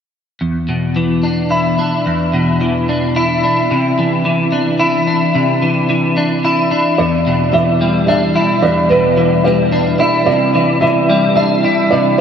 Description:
rock; 110 BPM; 3/4; straight; A4 = 445 Hz
clean electric guitar; arpeggios; 0.4-12.2 s; E2 to E4; -12 LUFS; left 1 dB; ensemble chorus, diffuse ambient delay
felt-muted upright piano; arpeggios; 7.0-12.2 s; B4 to E5; -15 LUFS; right 2 dB; lush chorus, diffuse ambient delay
wet huge ambient reverb, RT60 7.8 s; dreamy mix soaked in reverb; -12 LUFS; side -7 dB against mid
0.4-7.0 A section; 7.0-12.2 B section
0.4 E5; 3.7 Cadd9; 7.0 Em7; 10.3 Cadd9

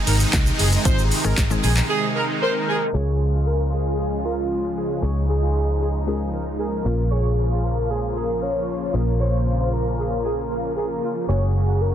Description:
dance-pop; 115 BPM; 4/4; straight; Db major; A4 = 440 Hz
mallet-like synth pluck; accompaniment; 0.0-11.9 s; Eb3 to Bb4; -31 LUFS; left 6 dB; chorus, sidechain pumping
supersaw chords; sustained chords; 0.0-11.9 s; C3 to Gb4; -27 LUFS; right 1 dB; phaser, sidechain pumping
warm horn section; melody; 0.1-11.9 s; F4 to Db5; -29 LUFS; right 3 dB; sidechain pumping, tape echo
vintage muted fingered electric bass; bass; 0.1-11.9 s; Gb1 to Db2; -22 LUFS; equal; sidechain pumping
deep house drum kit; drums; 0.1-1.9 s; handclaps, hi-hat, kick drum, shaker, snare drum; -22 LUFS; equal; overdrive
egg shaker; percussion; 0.2-1.9 s; -37 LUFS; right 8 dB
warm velvety synth lead; melody; 2.4-11.9 s; F4 to Db5; -26 LUFS; left 1 dB; chorus, tape echo
light reverb; dense, heavily limited modern master, low-pass filter; -19 LUFS; side -10 dB against mid
0.0-2.9 A section; 2.9-11.9 B section
drop 0.0-2.9; break 1.9-2.9
0.0 Ab; 2.9 Db; 6.9 Bbm; 11.3 Gb

